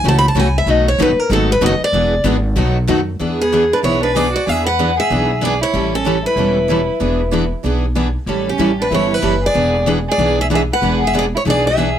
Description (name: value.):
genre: acoustic string swing (jazz manouche).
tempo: 189 BPM.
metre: 4/4.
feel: swing 59% on 8ths.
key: E mixolydian.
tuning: A4 = 440 Hz.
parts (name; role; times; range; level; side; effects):
picked steel-string acoustic guitar; melody; 0.0-12.0 s; G4 to B5; -17 LUFS; left 1 dB; plate reverb.
picked steel-string acoustic guitar; accompaniment; 0.0-11.9 s; B2 to A4; -20 LUFS; left 4 dB; none.
picked steel-string acoustic guitar; accompaniment; 0.0-11.9 s; B2 to B4; -22 LUFS; right 8 dB; none.
upright bass; bass; 0.0-12.0 s; E1 to F#2; -19 LUFS; equal; none.
rich violin; second line; 3.4-12.0 s; B3 to B4; -22 LUFS; right 5 dB; none.
room: moderate club ambience, RT60 0.5 s.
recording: none.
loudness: -13 LUFS.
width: side -10 dB against mid.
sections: 0.0-3.2 A section; 3.2-12.0 B section.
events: steel-string acoustic guitar solo 0.0-3.2.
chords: 0.0 F#m7; 0.7 B7; 1.9 E7; 2.6 B7; 3.2 E7; 5.7 A7; 7.0 E7; 8.3 A7; 9.6 E7.